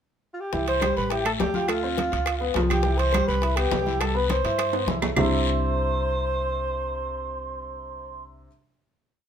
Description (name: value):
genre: Afro-Cuban jazz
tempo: 207 BPM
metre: 4/4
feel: straight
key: C major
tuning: A4 = 442 Hz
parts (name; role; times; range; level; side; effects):
- breathy alto saxophone; melody; 0.3-8.2 s; F4 to C5; -28 LUFS; equal; none
- warm upright piano; accompaniment; 0.5-8.5 s; C3 to F5; -28 LUFS; left 2 dB; none
- upright bass; bass; 0.5-8.5 s; A1 to G2; -29 LUFS; equal; none
- bongos; percussion; 0.5-5.2 s; none; -35 LUFS; left 10 dB; none
- congas; percussion; 0.5-5.2 s; none; -32 LUFS; equal; none
- guiro; percussion; 0.5-5.2 s; none; -36 LUFS; left 7 dB; none
- mellow alto ocarina; second line; 0.7-8.2 s; F5 to D6; -32 LUFS; right 7 dB; none
- timbales; percussion; 0.7-5.2 s; none; -32 LUFS; right 6 dB; none
- claves; percussion; 0.8-5.2 s; none; -33 LUFS; right 1 dB; none
room: light reverb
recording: minimal, uncompressed stereo recording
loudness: -22 LUFS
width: side -8 dB against mid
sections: 0.0-0.5 pickup bar; 0.5-5.2 A section; 5.2-7.5 final chord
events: drum fill 4.7-5.2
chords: 0.0 N.C.; 0.5 C; 1.1 A5; 1.7 Dm7; 2.3 Db7; 2.8 Cmaj7; 5.2 Cadd9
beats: 0.25 | 0.54 0.82 1.11 1.40 | 1.69 1.98 2.27 2.56 | 2.85 3.13 3.42 3.71 | 4.00 4.29 4.58 4.87 | 5.16 5.45 5.74 6.03 | 6.32 6.61 6.90 7.19